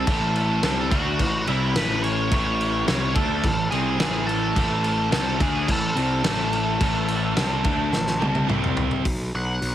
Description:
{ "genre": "quiet-loud alternative rock", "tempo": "107 BPM", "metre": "4/4", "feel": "straight", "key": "unclear", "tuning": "A4 = 440 Hz", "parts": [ { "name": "octave-fuzz lead guitar", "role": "melody", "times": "0.0-9.7 s", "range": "E4 to C#6", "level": "-27 LUFS", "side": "right 1 dB", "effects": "distortion" }, { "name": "crunchy overdriven guitar", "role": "riff", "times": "0.0-9.0 s", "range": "A2 to D4", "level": "-31 LUFS", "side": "left 1 dB", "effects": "none" }, { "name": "distorted electric guitar", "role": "riff", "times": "0.0-9.0 s", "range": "A2 to D4", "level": "-31 LUFS", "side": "left 11 dB", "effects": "distortion" }, { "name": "distorted electric guitar", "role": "riff", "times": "0.0-9.0 s", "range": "A2 to D4", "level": "-30 LUFS", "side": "right 11 dB", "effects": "overdrive" }, { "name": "fuzz picked electric bass", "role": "bass", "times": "0.0-9.7 s", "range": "A1 to D2", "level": "-26 LUFS", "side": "equal", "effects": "overdrive" }, { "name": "loose indie drum kit", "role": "drums", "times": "0.1-9.7 s", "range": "crash cymbal, hi-hat, kick drum, snare drum, toms", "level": "-25 LUFS", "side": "equal", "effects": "none" } ], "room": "little or no reverb", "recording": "heavily compressed radio sound, multiband compression", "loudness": "-20 LUFS", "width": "side -12 dB against mid", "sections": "0.0-9.1 A section", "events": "drum fill 7.9-9.1", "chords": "0.1 A; 8.5 C5; 9.1 B5" }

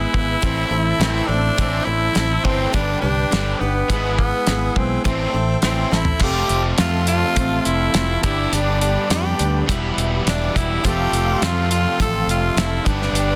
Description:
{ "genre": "folk rock and heartland rock", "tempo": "104 BPM", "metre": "4/4", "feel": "straight", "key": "unclear", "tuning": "A4 = 440 Hz", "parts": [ { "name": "raspy tenor saxophone", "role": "melody", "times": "0.0-13.4 s", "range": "B3 to A4", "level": "-25 LUFS", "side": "equal", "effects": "digital delay" }, { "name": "picked steel-string acoustic guitar", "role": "accompaniment", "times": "0.0-13.4 s", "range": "A2 to B4", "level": "-30 LUFS", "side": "equal", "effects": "none" }, { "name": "musette accordion", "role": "sustained chords", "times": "0.0-13.4 s", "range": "G4 to E6", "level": "-34 LUFS", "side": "equal", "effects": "none" }, { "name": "crunchy overdriven guitar", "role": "riff", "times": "0.0-13.4 s", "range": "E2 to G4", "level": "-28 LUFS", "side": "equal", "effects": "none" }, { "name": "fingered electric bass", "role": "bass", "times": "0.0-13.4 s", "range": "E1 to F2", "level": "-25 LUFS", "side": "equal", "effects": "none" }, { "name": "damped 70s drum kit", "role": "drums", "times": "0.1-13.3 s", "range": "crash cymbal, hi-hat, kick drum, snare drum, toms", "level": "-23 LUFS", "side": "equal", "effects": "none" } ], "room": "light reverb", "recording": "dense, heavily limited modern master", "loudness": "-19 LUFS", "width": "mono", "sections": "0.0-6.2 A section; 6.2-13.4 B section", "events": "drum fill 5.9", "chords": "0.4 Am; 2.7 G; 3.9 E/G#; 5.1 Am; 6.2 F; 8.2 G; 9.7 Em; 10.8 F" }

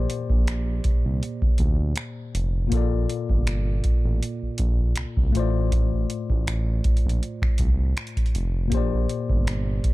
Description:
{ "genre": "contemporary R&B", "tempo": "80 BPM", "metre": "4/4", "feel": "swing 54% on 16ths", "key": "Bb major", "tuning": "A4 = 442 Hz", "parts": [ { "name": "tine electric piano", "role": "accompaniment", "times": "0.0-9.9 s", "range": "A2 to D5", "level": "-29 LUFS", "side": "moving between left 7 dB and right 3 dB", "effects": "auto-pan" }, { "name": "smooth synth bass", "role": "bass", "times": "0.0-9.9 s", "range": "F1 to D2", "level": "-24 LUFS", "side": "equal", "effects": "none" }, { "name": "booming analog drum machine", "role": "drums", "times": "0.1-9.9 s", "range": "finger snaps, hi-hat, kick drum", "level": "-22 LUFS", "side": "equal", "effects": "none" } ], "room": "little or no reverb", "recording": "dark, warm production", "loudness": "-21 LUFS", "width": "side -19 dB against mid", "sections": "0.0-9.9 A section", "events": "none", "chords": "0.0 Bb69; 2.7 Gm9; 5.3 Dm7/A; 8.7 Bb69" }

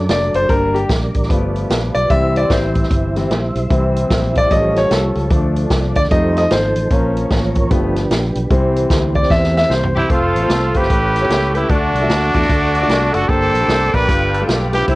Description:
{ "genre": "uptempo gospel", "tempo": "150 BPM", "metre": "4/4", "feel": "swing 63% on 8ths", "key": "unclear", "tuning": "A4 = 438 Hz", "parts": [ { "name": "clear grand piano", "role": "accompaniment", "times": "0.0-15.0 s", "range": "G2 to E5", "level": "-18 LUFS", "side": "left 1 dB", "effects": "cassette tape" }, { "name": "mellow tonewheel organ", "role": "sustained chords", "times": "0.0-15.0 s", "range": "E3 to E6", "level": "-23 LUFS", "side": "right 2 dB", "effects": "fast rotary speaker, chorus vibrato, cassette tape" }, { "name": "fingered electric bass", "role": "bass", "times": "0.0-15.0 s", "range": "F1 to F2", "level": "-20 LUFS", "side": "equal", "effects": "none" }, { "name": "swinging big-band drum kit", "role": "drums", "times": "0.1-15.0 s", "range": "hi-hat, kick drum, snare drum, toms", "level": "-18 LUFS", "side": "equal", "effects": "cassette tape" }, { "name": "growling trumpet", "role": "melody", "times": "10.0-15.0 s", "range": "D4 to B4", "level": "-18 LUFS", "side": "right 1 dB", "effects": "cassette tape, tape echo" }, { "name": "warm horn section", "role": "melody", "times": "10.0-15.0 s", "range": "A3 to C5", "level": "-22 LUFS", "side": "left 1 dB", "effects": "cassette tape" } ], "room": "light reverb", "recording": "home recording on cassette", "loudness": "-13 LUFS", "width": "side -20 dB against mid", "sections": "0.0-10.1 A section; 10.1-15.0 B section", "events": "grand piano solo 0.0-10.1; drum fill 9.3-10.1", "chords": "0.5 Gm; 1.3 G7; 2.1 C; 4.5 A7alt; 5.3 Dm; 6.1 F7; 6.9 Bbm; 7.7 G7; 8.5 C; 10.1 F; 10.9 A9; 11.7 D; 13.3 Gm; 14.1 G7" }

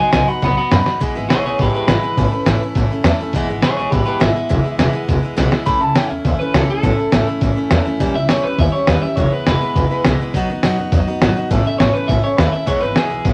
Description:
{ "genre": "rockabilly", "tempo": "206 BPM", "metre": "4/4", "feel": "straight", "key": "E major", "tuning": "A4 = 442 Hz", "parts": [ { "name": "electric guitar through a small old amp", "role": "melody", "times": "0.0-13.3 s", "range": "G4 to B5", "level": "-22 LUFS", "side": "equal", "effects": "none" }, { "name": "picked steel-string acoustic guitar", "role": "accompaniment", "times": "0.0-13.3 s", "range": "E2 to F#4", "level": "-24 LUFS", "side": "equal", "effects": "none" }, { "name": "upright bass", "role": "bass", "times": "0.1-13.3 s", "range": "E1 to F#2", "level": "-22 LUFS", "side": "equal", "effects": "none" }, { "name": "lo-fi sampler-style drum kit", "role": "drums", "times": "0.1-13.3 s", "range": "hi-hat, kick drum, snare drum", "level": "-21 LUFS", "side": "equal", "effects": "none" } ], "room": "moderate studio reverb, RT60 0.8 s", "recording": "none", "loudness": "-16 LUFS", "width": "mono", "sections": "0.0-1.0 A section; 1.0-13.3 A section", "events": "drum fill 0.9, 5.4", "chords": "0.0 B; 1.0 E; 2.2 A; 3.3 E; 5.7 A; 8.0 A#dim7; 9.2 E; 10.3 B; 11.5 A; 12.7 E" }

